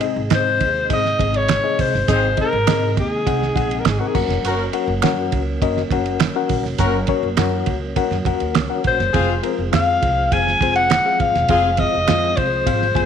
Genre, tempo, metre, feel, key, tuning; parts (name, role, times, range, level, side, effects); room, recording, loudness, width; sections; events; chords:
uptempo 1960s-style soul; 102 BPM; 4/4; straight; A4 = 440 Hz
reed electric piano; accompaniment; 0.0-13.1 s; Ab2 to Ab5; -23 LUFS; left 12 dB; fast tremolo
tonewheel organ; sustained chords; 0.0-13.1 s; C3 to Eb4; -28 LUFS; right 1 dB; slow rotary speaker, overdrive
cloth-damped thuddy drum kit; drums; 0.0-13.1 s; crash cymbal, hi-hat, kick drum, ride cymbal, snare drum; -23 LUFS; right 6 dB
upright bass; bass; 0.2-13.1 s; Fb1 to Ab2; -24 LUFS; right 1 dB
clear alto saxophone; melody; 0.3-4.2, 8.9-13.1 s; Gb4 to Ab5; -19 LUFS; left 2 dB
finger snaps; percussion; 0.3-12.2 s; -27 LUFS; right 12 dB
warm horn section; second line; 2.1-11.7 s; C4 to Bb4; -26 LUFS; equal
light reverb, studio reverb; 1960s-style stereo with parts hard left and right; -16 LUFS; side -8 dB against mid
0.0-13.1 A section
0.0 Ab; 4.1 Gb; 9.1 Fm